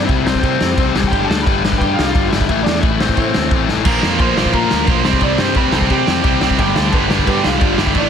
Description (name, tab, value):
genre	punk rock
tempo	176 BPM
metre	4/4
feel	straight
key	C major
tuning	A4 = 440 Hz
part	lead guitar through a small cranked amp	melody	0.0-8.1 s	C4 to D6	-21 LUFS	right 2 dB	overdrive
part	crunchy overdriven guitar	riff	0.0-8.1 s	G2 to C4	-19 LUFS	left 15 dB	none
part	modern bright picked electric bass	bass	0.0-8.1 s	G1 to C3	-22 LUFS	right 1 dB	none
part	raw garage drum kit	drums	0.1-8.0 s	crash cymbal, kick drum, ride cymbal, snare drum	-17 LUFS	right 1 dB	none
part	distorted electric guitar	riff	3.9-8.1 s	G2 to C4	-18 LUFS	right 13 dB	overdrive
room	light reverb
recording	dense, heavily limited modern master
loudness	-13 LUFS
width	side -8 dB against mid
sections	0.0-8.1 A section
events	drum fill 3.7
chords	0.0 C; 1.1 G; 2.5 Am; 3.9 Bb5; 5.0 C5; 6.6 G